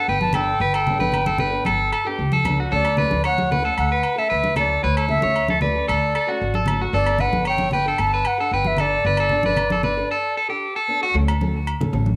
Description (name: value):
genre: highlife guitar band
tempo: 114 BPM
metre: 4/4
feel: straight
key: D major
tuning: A4 = 436 Hz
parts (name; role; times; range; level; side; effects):
- reedy jazz flute; melody; 0.0-10.4 s; C#5 to A5; -25 LUFS; equal; cassette tape, plate reverb
- nylon-string guitar; accompaniment; 0.0-12.1 s; F#3 to A4; -34 LUFS; equal; none
- electric guitar at the edge of break-up; arpeggios; 0.0-11.1 s; F#4 to C#5; -25 LUFS; equal; plate reverb
- upright bass; bass; 0.1-12.2 s; G1 to D2; -27 LUFS; equal; none
- congas; percussion; 0.2-12.2 s; none; -28 LUFS; equal; none
- agogo bells; percussion; 0.3-11.8 s; none; -33 LUFS; equal; none
room: moderate small room reverb, RT60 0.5 s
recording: home recording on cassette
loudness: -20 LUFS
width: mono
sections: 0.0-11.2 A section; 11.2-12.2 B section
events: break 10.1-11.2; clean electric guitar solo 11.2-12.2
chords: 0.0 Gadd9; 2.7 Dmaj7; 6.9 Gadd9; 11.2 Dmaj7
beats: 0.08 | 0.61 1.14 1.66 2.19 | 2.72 3.25 3.77 4.30 | 4.83 5.36 5.88 6.41 | 6.94 7.46 7.99 8.52 | 9.05 9.57 10.10 10.63 | 11.15 11.68